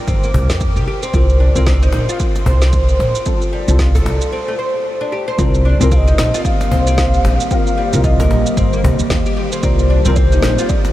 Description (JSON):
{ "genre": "organic downtempo", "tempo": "113 BPM", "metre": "4/4", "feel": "swing 60% on 16ths", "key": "C dorian", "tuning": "A4 = 440 Hz", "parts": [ { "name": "deep mellow chord stab", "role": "accompaniment", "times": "0.0-10.9 s", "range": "G3 to Bb4", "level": "-26 LUFS", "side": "left 3 dB", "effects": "ensemble chorus, sidechain pumping, tape echo" }, { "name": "warbly tape-like pad", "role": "sustained chords", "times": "0.0-10.9 s", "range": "D3 to D6", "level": "-25 LUFS", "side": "left 2 dB", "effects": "chorus, built-in reverb, phaser, sidechain pumping" }, { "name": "oud", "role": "arpeggios", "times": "0.0-10.9 s", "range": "G3 to C5", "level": "-22 LUFS", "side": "equal", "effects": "tape echo" }, { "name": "upright bass", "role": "bass", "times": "0.1-10.5 s", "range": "G1 to F2", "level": "-14 LUFS", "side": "equal", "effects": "sidechain pumping" }, { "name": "electronic kick drum", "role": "drums", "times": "0.1-10.8 s", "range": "none", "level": "-18 LUFS", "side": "equal", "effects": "overdrive" }, { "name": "electronic shaker and snare drum", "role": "drums", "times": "0.1-10.9 s", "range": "none", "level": "-26 LUFS", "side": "right 1 dB", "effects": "none" }, { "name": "cajon", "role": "percussion", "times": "0.3-10.9 s", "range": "none", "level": "-24 LUFS", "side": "left 1 dB", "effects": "none" }, { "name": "mellow bass bansuri", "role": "melody", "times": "5.9-10.9 s", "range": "C5 to G5", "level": "-22 LUFS", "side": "left 1 dB", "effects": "tape echo" } ], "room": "light reverb, small room ambience", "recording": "none", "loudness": "-12 LUFS", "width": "side -14 dB against mid", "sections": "0.0-5.4 A section; 5.4-10.9 B section", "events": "break 4.3-5.4", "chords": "0.0 Bb69/G; 1.1 C7(no3); 3.3 Dm7/C; 5.4 Cm7; 7.5 Ebmaj7; 9.6 Cm7", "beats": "0.08 0.61 | 1.14 1.67 2.20 2.73 | 3.26 3.79 4.33 4.86 | 5.39 5.92 6.45 6.98 | 7.51 8.04 8.57 9.10 | 9.63 10.17 10.70" }